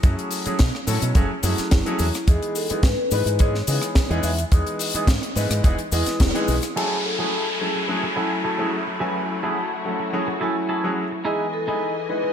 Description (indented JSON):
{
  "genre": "nu-disco, nu disco",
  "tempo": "107 BPM",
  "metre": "4/4",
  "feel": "straight",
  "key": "F# dorian",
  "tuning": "A4 = 440 Hz",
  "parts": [
    { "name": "clear grand piano", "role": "accompaniment", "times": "0.0-12.3 s", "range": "E3 to G#5", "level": "-26 LUFS", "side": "equal", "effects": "wide subtle chorus, sidechain pumping" },
    { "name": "fingered electric bass with an envelope filter", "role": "bass", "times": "0.0-6.6 s", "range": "E1 to C#3", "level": "-24 LUFS", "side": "equal", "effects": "none" },
    { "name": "kick drum", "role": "drums", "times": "0.0-6.3 s", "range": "none", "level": "-17 LUFS", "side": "equal", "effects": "studio ambience" },
    { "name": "tight funk drum kit", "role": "drums", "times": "0.0-6.9 s", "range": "crash cymbal, hi-hat, rim click, snare drum", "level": "-27 LUFS", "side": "left 1 dB", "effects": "studio ambience, gated reverb" },
    { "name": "cabasa", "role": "percussion", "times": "0.0-6.7 s", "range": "none", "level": "-34 LUFS", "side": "left 6 dB", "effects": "none" },
    { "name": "vibraphone with medium mallets", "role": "melody", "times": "1.4-12.3 s", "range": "E4 to C#5", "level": "-28 LUFS", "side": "left 2 dB", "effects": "ping-pong delay" },
    { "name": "muted studio string section", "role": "sustained chords", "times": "6.8-12.3 s", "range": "E3 to G#5", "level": "-30 LUFS", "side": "left 2 dB", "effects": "sidechain pumping" },
    { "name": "clean electric guitar", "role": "riff", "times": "6.8-12.3 s", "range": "D#4 to B4", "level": "-28 LUFS", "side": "right 2 dB", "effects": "wide subtle chorus, low-pass filter" },
    { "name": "downlifter", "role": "sound effects", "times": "6.8-11.2 s", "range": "none", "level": "-29 LUFS", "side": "equal", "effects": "none" }
  ],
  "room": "light reverb, small room ambience",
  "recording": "bright 1980s-style digital production",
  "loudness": "-20 LUFS",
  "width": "side -8 dB against mid",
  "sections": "0.0-6.8 A section; 6.8-12.3 B section",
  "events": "band accent 6.2; filter sweep on clean electric guitar 6.8-12.3",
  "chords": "0.0 F#m9; 2.3 Emaj7; 6.8 F#m9; 11.3 Emaj7"
}